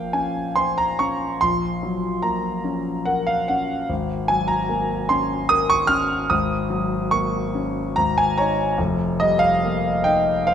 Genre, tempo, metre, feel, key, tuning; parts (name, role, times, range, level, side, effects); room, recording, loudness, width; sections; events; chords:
classical, impressionist solo piano; 73 BPM; 3/4; uneven beats, rubato; A4 = 440 Hz
warm grand piano; solo; 0.0-10.5 s; F1 to F6; -19 LUFS; equal
moderate scoring stage reverb, RT60 2.0 s; -19 LUFS; side -8 dB against mid
0.0-10.5 A section
0.0 Bbmadd9; 1.4 Gb/Bb; 3.9 Ab9sus4; 8.0 Eb5/Ab; 8.8 F9sus4